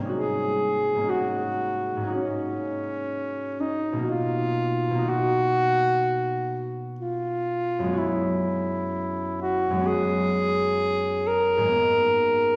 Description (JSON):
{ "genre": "classical, impressionist duo for alto saxophone and harp", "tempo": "62 BPM", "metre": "4/4", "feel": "uneven beats, rubato", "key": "G# dorian", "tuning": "A4 = 439 Hz", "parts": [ { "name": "concert harp", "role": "accompaniment", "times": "0.0-12.6 s", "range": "F#2 to F#4", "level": "-30 LUFS", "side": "equal", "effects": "none" }, { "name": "bright alto saxophone", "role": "melody", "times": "0.1-12.6 s", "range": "C#4 to A#4", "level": "-26 LUFS", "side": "equal", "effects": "none" } ], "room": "wet concert hall reverb, RT60 1.9 s", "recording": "none", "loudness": "-25 LUFS", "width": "mono", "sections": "0.1-12.6 A section", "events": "none", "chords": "0.1 G#9sus4; 4.1 Bmaj7; 8.0 F#9sus4; 11.7 G#madd9" }